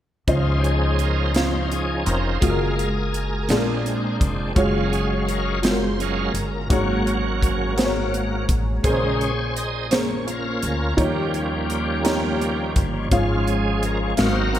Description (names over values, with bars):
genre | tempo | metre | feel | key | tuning
slow gospel | 56 BPM (dotted quarters) | 6/8 | straight | Db major | A4 = 440 Hz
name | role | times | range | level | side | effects
warm upright piano | accompaniment | 0.3-14.6 s | Ab2 to F5 | -24 LUFS | equal | analog chorus
bright tonewheel organ | sustained chords | 0.3-14.6 s | Db3 to F5 | -25 LUFS | right 1 dB | slow rotary speaker, chorus vibrato
upright bass | bass | 0.3-14.6 s | F1 to Eb2 | -25 LUFS | equal | none
crisp fusion drum kit | drums | 0.3-14.6 s | hi-hat, kick drum, snare drum | -25 LUFS | equal | gated reverb
room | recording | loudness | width
moderate plate reverb, RT60 2.1 s | bright 1980s-style digital production | -19 LUFS | side -11 dB against mid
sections
0.3-14.6 A section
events
tonewheel organ solo 0.3-14.6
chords
0.3 Dbmaj9; 2.4 Gbmaj9; 3.5 Bb7; 4.6 Gbmaj9#11; 6.7 Ab9sus4; 8.8 Bbm9; 11.0 Eb7; 13.1 Db/Ab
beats
| 0.28 1.35 | 2.42 3.50 | 4.57 5.64 | 6.71 7.78 | 8.85 9.91 | 10.98 12.05 | 13.12 14.18